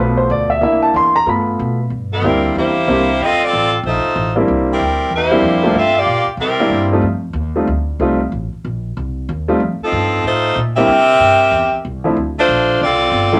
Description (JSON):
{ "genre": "jazz, big band swing", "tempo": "187 BPM", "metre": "4/4", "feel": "swing 63% on 8ths", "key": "C major", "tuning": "A4 = 439 Hz", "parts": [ { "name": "warm grand piano", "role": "accompaniment", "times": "0.0-13.4 s", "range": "F3 to C6", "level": "-18 LUFS", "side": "equal", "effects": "none" }, { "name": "upright bass", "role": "bass", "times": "0.0-13.4 s", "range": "F1 to C3", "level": "-24 LUFS", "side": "equal", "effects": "none" }, { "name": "bright saxophone section", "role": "melody", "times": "2.1-6.9, 9.8-13.4 s", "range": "F3 to E5", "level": "-16 LUFS", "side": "equal", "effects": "none" } ], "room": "wet small room reverb, RT60 0.5 s", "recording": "none", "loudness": "-16 LUFS", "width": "mono", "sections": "0.0-1.9 A section; 1.9-13.4 B section", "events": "grand piano solo 0.0-1.9", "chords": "0.0 G7 (rootless); 0.6 C7; 1.3 G7; 1.9 C7; 3.2 F7; 4.5 C7; 5.8 Gm7; 6.4 C7; 7.0 F7; 10.9 C7; 12.2 Dm7" }